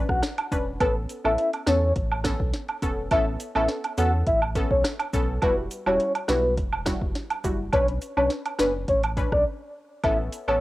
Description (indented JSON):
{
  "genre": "dancehall",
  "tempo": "104 BPM",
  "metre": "4/4",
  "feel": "straight",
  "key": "A mixolydian",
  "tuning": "A4 = 440 Hz",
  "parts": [
    { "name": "analog pluck", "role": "accompaniment", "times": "0.0-10.6 s", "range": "G3 to B4", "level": "-30 LUFS", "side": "left 1 dB", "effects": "chorus, cassette tape" },
    { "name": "warm sub bass", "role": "bass", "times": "0.0-10.6 s", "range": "E1 to E2", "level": "-28 LUFS", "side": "equal", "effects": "none" },
    { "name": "soft octave-layered synth lead", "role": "melody", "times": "0.1-10.6 s", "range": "B4 to F#5", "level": "-24 LUFS", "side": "equal", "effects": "chorus, tremolo, cassette tape" },
    { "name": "afro-pop drum kit", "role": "drums", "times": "0.1-10.5 s", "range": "hi-hat, kick drum, rim click, snare drum", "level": "-28 LUFS", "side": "equal", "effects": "cassette tape" },
    { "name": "woodblock and cabasa", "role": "percussion", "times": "0.4-10.6 s", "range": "none", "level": "-30 LUFS", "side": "right 4 dB", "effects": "none" }
  ],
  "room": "digital ambience",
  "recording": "home recording on cassette",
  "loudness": "-22 LUFS",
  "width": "side -17 dB against mid",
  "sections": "0.0-10.0 A section",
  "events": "break 9.5-10.0",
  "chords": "0.0 Bmadd9; 0.8 Aadd9; 5.4 Emadd9; 7.7 Bmadd9; 10.0 Aadd9"
}